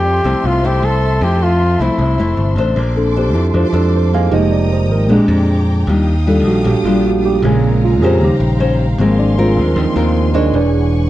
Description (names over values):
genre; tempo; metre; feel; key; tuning
bossa nova; 154 BPM; 4/4; straight; Bb major; A4 = 440 Hz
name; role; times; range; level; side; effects
warm flugelhorn; melody; 0.0-2.6 s; E4 to A4; -17 LUFS; left 1 dB; plate reverb
nylon-string guitar; accompaniment; 0.0-11.1 s; Bb2 to Db5; -18 LUFS; left 2 dB; none
warm symphonic string section; sustained chords; 0.0-11.1 s; D4 to Eb6; -27 LUFS; equal; none
modern bright picked electric bass; bass; 0.0-11.1 s; E1 to F2; -16 LUFS; equal; none
tine electric piano; accompaniment; 0.1-11.1 s; Db3 to F5; -16 LUFS; moving between left 2 dB and right 7 dB; auto-pan
room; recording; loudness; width
light reverb; worn, warbling old tape, cassette tape, warbly pitch drift; -12 LUFS; side -14 dB against mid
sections
0.0-2.8 A section; 2.8-11.1 B section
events
tine electric piano solo 2.8-11.1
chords
0.0 Fmaj7; 2.8 Bbmaj9; 4.3 Fm11; 5.1 Bb13; 5.9 Ebmaj9; 7.4 Bbm7; 8.2 Eb13; 9.0 Ab69; 10.5 E13